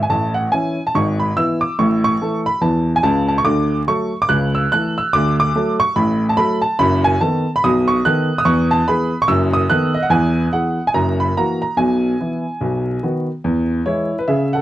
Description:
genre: jazz, stride piano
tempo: 144 BPM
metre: 4/4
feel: swing 61% on 8ths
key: A major, E major from 6.8 s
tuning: A4 = 441 Hz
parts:
  - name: clear upright piano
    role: solo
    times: 0.0-14.6 s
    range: F#1 to F#6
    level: -15 LUFS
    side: equal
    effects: none
room: light reverb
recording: dry, close 1970s-style studio recording, vinyl crackle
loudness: -15 LUFS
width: side -14 dB against mid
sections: 0.1-13.4 A section; 13.4-14.6 B section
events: none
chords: 0.1 A; 0.9 E/G#; 1.8 A; 3.5 D; 4.3 A/C#; 5.1 D; 6.8 B7/F#; 7.6 B7; 8.5 E; 9.3 B7/F#; 10.1 E; 10.9 F#7; 11.8 E/B; 12.6 B; 13.4 E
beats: | 0.11 0.52 0.94 1.36 | 1.78 2.20 2.62 3.03 | 3.45 3.87 4.29 4.70 | 5.12 5.54 5.96 6.37 | 6.79 7.21 7.62 8.04 | 8.45 8.87 9.29 9.70 | 10.12 10.53 10.95 11.36 | 11.78 12.20 12.61 13.03 | 13.44 13.86 14.27

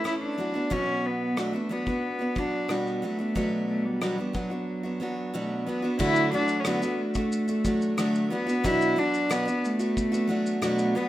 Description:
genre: acoustic pop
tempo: 91 BPM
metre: 4/4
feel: straight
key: unclear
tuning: A4 = 438 Hz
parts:
  - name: warm cello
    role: melody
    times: 0.0-11.1 s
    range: F#3 to E4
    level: -27 LUFS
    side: equal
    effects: none
  - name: picked steel-string acoustic guitar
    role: accompaniment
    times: 0.0-11.1 s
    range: B2 to B4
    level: -28 LUFS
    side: right 1 dB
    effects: none
  - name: loose indie drum kit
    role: drums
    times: 0.1-10.9 s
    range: crash cymbal, kick drum, rim click, shaker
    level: -35 LUFS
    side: left 1 dB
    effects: none
room: light reverb, small room ambience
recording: rough home demo mix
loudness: -24 LUFS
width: side -14 dB against mid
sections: 0.0-6.0 A section; 6.0-11.1 B section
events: break 4.7-6.0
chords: 0.4 Bm; 6.0 D; 8.3 Bm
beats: 0.05 | 0.71 1.37 2.03 2.69 | 3.35 4.01 4.67 5.34 | 6.00 6.66 7.32 7.98 | 8.64 9.30 9.96 10.62

